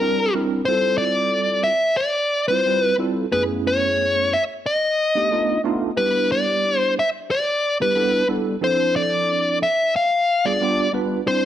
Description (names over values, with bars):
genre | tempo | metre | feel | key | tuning
jazz | 91 BPM | 4/4 | straight | unclear | A4 = 438 Hz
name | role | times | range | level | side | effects
dark smooth lead guitar | melody | 0.0-11.5 s | Bb4 to F5 | -19 LUFS | left 1 dB | overdrive, slapback echo
bright tine electric piano | accompaniment | 0.0-11.5 s | F#2 to C5 | -23 LUFS | right 3 dB | fast stereo tremolo, analog chorus
room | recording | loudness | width
light reverb, digital ambience | none | -18 LUFS | side -11 dB against mid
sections
0.0-11.5 A section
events
none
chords
0.0 C7; 0.7 Fmaj7; 3.3 F#m11; 4.6 B7#9; 6.0 Em7; 8.6 Dm7; 9.9 G7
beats
0.01 | 0.67 1.34 2.00 2.66 | 3.32 3.99 4.65 5.31 | 5.97 6.63 7.30 7.96 | 8.62 9.29 9.95 10.61 | 11.28